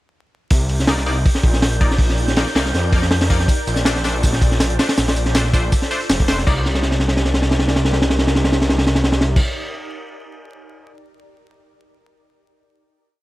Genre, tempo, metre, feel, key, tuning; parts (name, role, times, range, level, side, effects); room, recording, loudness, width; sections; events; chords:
drum and bass, jungle; 161 BPM; 4/4; swing 53% on 16ths; C dorian; A4 = 440 Hz
ethereal airy pad; sustained chords; 1.0-9.4 s; Eb4 to D5; -29 LUFS; left 1 dB; ensemble chorus, built-in reverb
detuned saw bass; bass; 0.5-9.4 s; F1 to F2; -19 LUFS; equal
crunchy breakbeat drum kit; drums; 0.5-10.9 s; crash cymbal, hi-hat, kick drum, snare drum; -17 LUFS; equal
wind-like tuned noise texture; texture; 0.8-6.5 s; G6; -32 LUFS; right 3 dB; built-in reverb
band-passed chord stab; stabs; 0.9-9.4 s; A3 to D5; -26 LUFS; left 2 dB; chorus, dub echo
breakbeat sampler-style drum kit; drums; 3.5-6.4 s; hi-hat, snare drum, tambourine; -29 LUFS; equal; high-pass filter on perc, high-pass filter on snare, high-pass filter on hats, high-pass filter on room
studio ambience; vinyl crackle; -15 LUFS; side -17 dB against mid
0.5-6.5 drop; 6.5-9.4 final chord
drop 0.5-6.5; drum fill 6.7-9.4
0.5 Cm9; 3.5 Bbmaj9; 6.5 Cm9